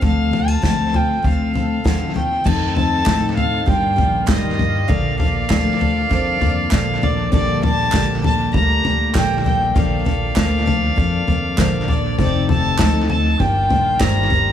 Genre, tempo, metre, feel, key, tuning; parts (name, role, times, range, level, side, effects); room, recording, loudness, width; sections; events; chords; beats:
indie folk with a building arrangement; 99 BPM; 4/4; straight; A4 = 440 Hz
warm fiddle; melody; 0.0-14.5 s; D5 to Bb5; -21 LUFS; equal; tape echo
fingerpicked steel-string acoustic guitar; accompaniment; 0.0-2.5 s; A2 to A4; -31 LUFS; left 1 dB; tape echo
picked steel-string acoustic guitar; accompaniment; 0.0-14.5 s; G2 to A4; -26 LUFS; left 6 dB; tape echo
upright bass; bass; 0.0-14.5 s; F1 to A2; -20 LUFS; equal
unplugged drum kit; drums; 0.0-14.4 s; crash cymbal, kick drum, snare drum, toms; -20 LUFS; left 1 dB
clear brass ensemble; sustained chords; 2.4-14.5 s; Bb2 to D5; -32 LUFS; right 2 dB
felt-muted upright piano; accompaniment; 2.5-14.5 s; F1 to F5; -28 LUFS; right 2 dB
group handclap; percussion; 3.1-14.1 s; -32 LUFS; right 6 dB; tape echo
small room ambience; echo-heavy mix; -15 LUFS; side -10 dB against mid
0.0-2.5 A section; 2.5-14.5 B section
0.0 Dm7; 2.5 F7; 3.7 Ebmaj7/G; 4.9 Bbmaj7; 7.3 Gmadd9/Bb; 9.8 Bbmaj7; 12.2 F7; 13.4 Ebmaj7/G
| 0.02 0.63 1.24 1.85 | 2.46 3.07 3.68 4.29 | 4.89 5.50 6.11 6.72 | 7.33 7.93 8.54 9.15 | 9.76 10.37 10.97 11.58 | 12.18 12.79 13.40 14.00